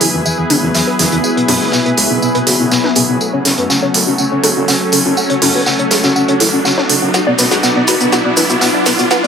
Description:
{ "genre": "melodic techno", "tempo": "122 BPM", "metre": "4/4", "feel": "straight", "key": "F# minor", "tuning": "A4 = 440 Hz", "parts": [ { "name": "soft octave-layered synth lead", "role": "melody", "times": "0.0-9.3 s", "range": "E3 to B4", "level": "-18 LUFS", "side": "left 1 dB", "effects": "chorus, tremolo, dub echo" }, { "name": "lush unison pad", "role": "sustained chords", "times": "0.0-9.3 s", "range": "F#3 to B4", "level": "-18 LUFS", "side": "left 1 dB", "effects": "chorus" }, { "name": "tight sequenced synth", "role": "arpeggios", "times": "0.0-9.3 s", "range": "E4 to F#5", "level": "-20 LUFS", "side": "equal", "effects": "chorus, dub echo" }, { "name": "gritty driven synth bass", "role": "bass", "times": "0.0-9.1 s", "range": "F#1 to F#2", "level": "-24 LUFS", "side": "equal", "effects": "high-pass filter" }, { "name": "crunchy breakbeat drum kit", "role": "drums", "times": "0.0-9.3 s", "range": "hi-hat, snare drum, tambourine", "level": "-19 LUFS", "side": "equal", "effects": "high-pass filter on hats, high-pass filter on snare, high-pass filter on perc, high-pass filter on room" }, { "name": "techno drum kit", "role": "drums", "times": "0.0-9.2 s", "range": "hi-hat, shaker, snare drum, toms", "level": "-15 LUFS", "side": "right 1 dB", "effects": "high-pass filter on perc, high-pass filter on snare, high-pass filter on hats, high-pass filter on toms, high-pass filter on room" }, { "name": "riser", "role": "sound effects", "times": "2.9-9.3 s", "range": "none", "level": "-22 LUFS", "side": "right 1 dB", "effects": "none" }, { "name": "warbly tape-like pad", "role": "texture", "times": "0.0-9.3 s", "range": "B3 to F#5", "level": "-20 LUFS", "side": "left 1 dB", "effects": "chorus, built-in reverb, phaser" } ], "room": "moderate recital hall reverb, RT60 1.4 s, digital ambience", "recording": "high-pass filter", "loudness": "-10 LUFS", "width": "side -7 dB against mid", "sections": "0.0-9.3 A section", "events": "build-up 0.0-9.3; filter sweep on synth arpeggio sound 0.0-9.3; filter sweep on soft synth lead 0.0-9.3; riser 2.9-9.3; drum fill 7.1-9.3", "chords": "0.0 E/F#; 3.2 F#m; 7.1 Bm/F#", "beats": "0.26 0.75 | 1.24 1.73 2.22 2.71 | 3.21 3.70 4.19 4.68 | 5.17 5.67 6.16 6.65 | 7.14 7.63 8.12 8.62 | 9.11" }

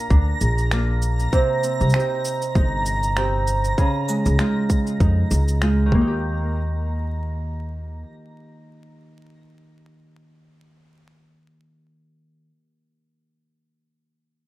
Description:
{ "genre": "folktronica", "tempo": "98 BPM", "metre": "4/4", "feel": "swing 56% on 16ths", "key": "Eb major", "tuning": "A4 = 441 Hz", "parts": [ { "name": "Celtic harp", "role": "arpeggios", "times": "0.0-12.5 s", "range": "Bb2 to G4", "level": "-24 LUFS", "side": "right 1 dB", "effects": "digital delay" }, { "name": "backwards swelling texture", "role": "texture", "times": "0.0-6.2 s", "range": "Bb5 to Bb6", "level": "-29 LUFS", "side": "right 2 dB", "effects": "built-in reverb" }, { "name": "upright bass", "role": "bass", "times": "0.1-8.0 s", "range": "G1 to F2", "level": "-21 LUFS", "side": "equal", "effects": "none" }, { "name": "electronic kick drum", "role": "drums", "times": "0.1-6.1 s", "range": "none", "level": "-20 LUFS", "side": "equal", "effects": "none" }, { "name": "electronic shaker and finger snaps", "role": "drums", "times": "0.1-5.8 s", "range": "none", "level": "-29 LUFS", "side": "equal", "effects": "none" } ], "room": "light reverb", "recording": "vinyl crackle", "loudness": "-18 LUFS", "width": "side -17 dB against mid", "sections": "0.0-6.2 A section; 6.2-8.7 B section", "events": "none", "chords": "0.0 Bb; 1.3 Cm; 3.8 Dbadd9; 5.9 Eb", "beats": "0.10 0.72 | 1.33 1.94 2.55 3.17 | 3.78 4.39 5.00 5.61 | 6.23 6.84 7.45 8.06" }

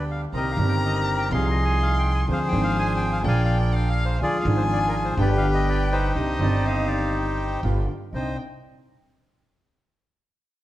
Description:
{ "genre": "tango", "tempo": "124 BPM", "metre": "4/4", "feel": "rubato", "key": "C minor", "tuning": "A4 = 441 Hz", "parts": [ { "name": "bandoneon", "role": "melody", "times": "0.0-8.4 s", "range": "Eb4 to Bb5", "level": "-27 LUFS", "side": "left 1 dB", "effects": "none" }, { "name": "dark violin", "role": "second line", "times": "0.0-8.4 s", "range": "Eb5 to C6", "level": "-31 LUFS", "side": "left 3 dB", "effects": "none" }, { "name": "clear concert grand piano", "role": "accompaniment", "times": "0.0-8.3 s", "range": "G1 to Ab4", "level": "-27 LUFS", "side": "equal", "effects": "none" }, { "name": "bandoneon", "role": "stabs", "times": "0.0-8.3 s", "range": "B3 to C5", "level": "-35 LUFS", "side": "right 4 dB", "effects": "none" }, { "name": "upright bass", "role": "bass", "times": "0.0-8.3 s", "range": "G1 to D2", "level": "-24 LUFS", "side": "right 1 dB", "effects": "none" }, { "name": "bright reedy silver concert flute", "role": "second line", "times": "6.4-8.4 s", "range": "D5 to Eb5", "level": "-33 LUFS", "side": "right 3 dB", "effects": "none" } ], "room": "moderate large studio reverb, RT60 1.3 s", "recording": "none", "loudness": "-20 LUFS", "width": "side -14 dB against mid", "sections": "0.0-8.1 A section; 8.1-10.1 B section", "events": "none", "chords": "0.3 Cm7; 1.3 Fm7/C; 2.3 Dm7b5; 3.2 Bb7; 4.2 Ddim; 5.2 G; 6.2 Cmadd9; 7.6 G7; 8.1 Cmadd9", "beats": "| 0.34 0.83 1.32 1.80 | 2.29 2.77 3.25 3.73 | 4.21 4.70 5.18 5.67 | 6.16 6.65 7.14 7.64 | 8.14" }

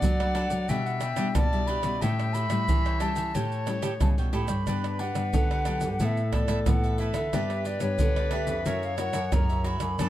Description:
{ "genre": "samba and choro", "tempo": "90 BPM", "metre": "4/4", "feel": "straight", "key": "unclear", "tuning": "A4 = 440 Hz", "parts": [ { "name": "hollow wooden flute", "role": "melody", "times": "0.0-10.1 s", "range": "C#5 to B5", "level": "-32 LUFS", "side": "right 1 dB", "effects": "plate reverb" }, { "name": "clear clarinet", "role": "second line", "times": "0.0-10.1 s", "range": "A4 to E5", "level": "-34 LUFS", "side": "left 5 dB", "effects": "none" }, { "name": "cavaquinho", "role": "accompaniment", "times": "0.0-10.1 s", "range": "D4 to G5", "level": "-38 LUFS", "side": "right 6 dB", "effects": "none" }, { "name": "nylon-string guitar", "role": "accompaniment", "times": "0.0-10.1 s", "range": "G2 to A#4", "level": "-36 LUFS", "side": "left 5 dB", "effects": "none" }, { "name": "nylon-string guitar", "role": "bass", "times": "0.0-10.1 s", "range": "F2 to F#3", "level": "-30 LUFS", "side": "equal", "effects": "none" }, { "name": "maracas, surdo, pandeiro and tamborim", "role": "percussion", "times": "0.0-10.1 s", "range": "none", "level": "-28 LUFS", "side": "equal", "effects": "none" } ], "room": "light reverb", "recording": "close, detailed microphones", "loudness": "-24 LUFS", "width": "side -13 dB against mid", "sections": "0.0-10.1 A section", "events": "none", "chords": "0.0 Bm7; 0.7 Em7/B; 2.0 A7; 4.7 Gmaj7; 6.0 Asus2; 7.3 G; 8.7 F#7", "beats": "0.03 0.69 1.36 | 2.02 2.69 3.35 4.01 | 4.68 5.34 6.00 6.67 | 7.33 8.00 8.66 9.33 | 9.99" }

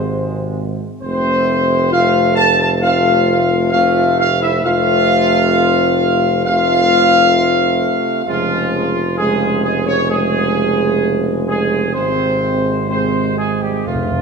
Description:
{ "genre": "classical", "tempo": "66 BPM", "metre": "4/4", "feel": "straight", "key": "unclear", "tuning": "A4 = 440 Hz", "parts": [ { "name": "dark trumpet section", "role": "melody", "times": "0.0-14.2 s", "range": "F4 to A5", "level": "-16 LUFS", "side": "right 1 dB", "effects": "none" }, { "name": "clear trombone section", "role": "sustained chords", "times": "0.0-14.2 s", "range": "C3 to A3", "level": "-22 LUFS", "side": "right 4 dB", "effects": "none" }, { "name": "mellow French horn section", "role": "sustained chords", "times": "0.0-14.2 s", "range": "F3 to A4", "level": "-19 LUFS", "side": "left 6 dB", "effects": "none" }, { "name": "warm tuba", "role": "bass", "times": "0.0-14.2 s", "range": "F1 to Ab1", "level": "-19 LUFS", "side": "right 3 dB", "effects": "none" }, { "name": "timpani", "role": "percussion", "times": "13.9-14.2 s", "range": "F2", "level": "-22 LUFS", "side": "left 1 dB", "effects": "none" } ], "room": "wet scoring stage reverb, RT60 1.8 s", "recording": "minimal, uncompressed stereo recording", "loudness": "-13 LUFS", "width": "side -5 dB against mid", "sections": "0.0-14.2 A section", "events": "timpani fill 13.9-14.2", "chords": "0.0 Ab; 1.0 F; 8.3 Db/F; 12.0 Ab", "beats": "0.12 | 1.03 1.93 2.83 3.73 | 4.63 5.54 6.45 7.35 | 8.26 9.19 10.11 11.03 | 11.95 12.89 13.86" }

